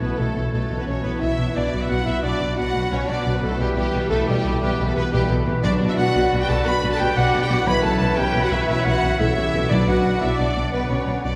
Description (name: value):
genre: cinematic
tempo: 118 BPM (dotted quarters)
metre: 12/8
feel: straight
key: B minor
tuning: A4 = 440 Hz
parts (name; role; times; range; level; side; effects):
- warm symphonic violin section; melody; 0.0-11.3 s; G4 to B5; -33 LUFS; equal; none
- clear oboe; second line; 0.0-11.4 s; B4 to D5; -35 LUFS; equal; none
- mellow clarinet; second line; 0.0-11.4 s; G4 to B5; -32 LUFS; equal; none
- mellow hollow small flute group; second line; 0.0-11.4 s; D5 to A5; -35 LUFS; equal; none
- rich symphonic violin section; second line; 0.0-11.4 s; G4 to B5; -34 LUFS; equal; none
- warm symphonic viola section; accompaniment; 0.0-11.4 s; E4 to D5; -32 LUFS; equal; none
- mellow trombone section; sustained chords; 0.0-11.4 s; D3 to D4; -33 LUFS; equal; none
- warm French horn section; sustained chords; 0.0-11.4 s; G3 to B4; -28 LUFS; equal; none
- concert harp; arpeggios; 0.0-11.4 s; B2 to B4; -33 LUFS; equal; none
- rich studio double bass section; bass; 0.0-11.3 s; B1; -28 LUFS; equal; none
- warm symphonic cello section; bass; 0.0-11.3 s; B2; -30 LUFS; equal; none
- timpani; percussion; 5.6-10.2 s; B2; -28 LUFS; equal; none
room: wet scoring stage reverb, RT60 1.9 s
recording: heard from further back in the room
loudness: -21 LUFS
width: mono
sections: 0.0-11.4 A section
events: none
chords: 0.0 A/B; 1.6 Bm; 3.6 Em/B; 5.6 Bm